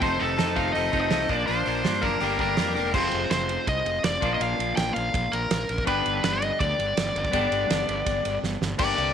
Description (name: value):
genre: indie rock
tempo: 164 BPM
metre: 4/4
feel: straight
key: unclear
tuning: A4 = 441 Hz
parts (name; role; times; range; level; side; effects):
- nasal lead guitar with a parked wah; melody; 0.0-9.1 s; A4 to G5; -26 LUFS; left 1 dB; overdrive
- cranked stack guitar; riff; 0.0-9.1 s; F2 to Eb4; -31 LUFS; right 12 dB; overdrive, lush chorus
- overdriven electric guitar; riff; 0.0-9.1 s; F3 to A4; -30 LUFS; left 13 dB; none
- fuzz fingered electric bass; bass; 0.0-9.1 s; E1 to G2; -31 LUFS; equal; overdrive
- loose indie drum kit; drums; 0.0-9.1 s; crash cymbal, hi-hat, kick drum, ride cymbal, snare drum; -30 LUFS; right 4 dB; none
room: studio reverb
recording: 1960s-style stereo with parts hard left and right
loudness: -22 LUFS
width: side -8 dB against mid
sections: 0.0-2.9 A section; 2.9-8.8 B section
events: drum fill 8.4-8.8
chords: 0.0 F7; 1.3 Bb; 2.2 Gm7; 2.9 Fm; 4.2 Bb; 5.9 G